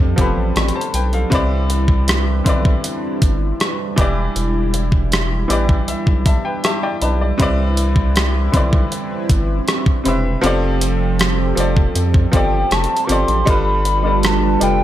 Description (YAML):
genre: contemporary R&B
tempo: 79 BPM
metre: 4/4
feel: straight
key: C major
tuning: A4 = 445 Hz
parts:
  - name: clear baby grand piano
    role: accompaniment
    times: 0.0-14.8 s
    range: C3 to B5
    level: -21 LUFS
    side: left 2 dB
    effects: none
  - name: chorused pulse-width pad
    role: sustained chords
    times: 0.0-14.8 s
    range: F3 to B4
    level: -23 LUFS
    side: right 2 dB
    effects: sidechain pumping
  - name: saturated sub bass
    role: bass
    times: 0.0-14.8 s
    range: E1 to F2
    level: -19 LUFS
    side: equal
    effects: none
  - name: clean 12-bit digital drum machine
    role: drums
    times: 0.2-14.8 s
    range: hi-hat, kick drum, rim click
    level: -17 LUFS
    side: equal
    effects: overdrive
  - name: hollow clarinet-like synth lead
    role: melody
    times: 12.4-14.8 s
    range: G5 to D6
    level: -19 LUFS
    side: left 1 dB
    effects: chorus
room: digital ambience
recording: none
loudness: -14 LUFS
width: side -12 dB against mid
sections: 0.0-13.5 A section; 13.5-14.8 B section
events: grand piano fill 5.1-7.4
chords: 0.0 F69; 1.3 Cmaj9; 4.0 Em7; 7.4 Cmaj9; 10.4 F69; 13.5 G7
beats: 0.56 | 1.32 2.08 2.84 3.60 | 4.36 5.12 5.88 6.64 | 7.39 8.15 8.91 9.67 | 10.43 11.19 11.95 12.71 | 13.47 14.23